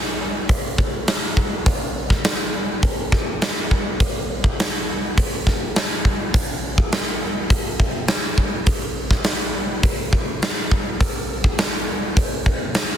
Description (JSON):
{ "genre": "rock", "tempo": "103 BPM", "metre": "4/4", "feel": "straight", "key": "none", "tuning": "none", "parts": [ { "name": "huge arena drum kit", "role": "drums", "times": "0.5-12.9 s", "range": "hi-hat, kick drum, snare drum", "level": "-18 LUFS", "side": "equal", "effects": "none" } ], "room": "light reverb", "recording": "dense, heavily limited modern master", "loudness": "-18 LUFS", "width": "side -9 dB against mid", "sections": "0.0-13.0 A section", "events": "none", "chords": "none", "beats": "0.50 1.08 | 1.67 2.25 2.83 3.42 | 4.00 4.59 5.17 5.75 | 6.34 6.92 7.51 8.09 | 8.67 9.26 9.84 10.42 | 11.00 11.58 12.16 12.74" }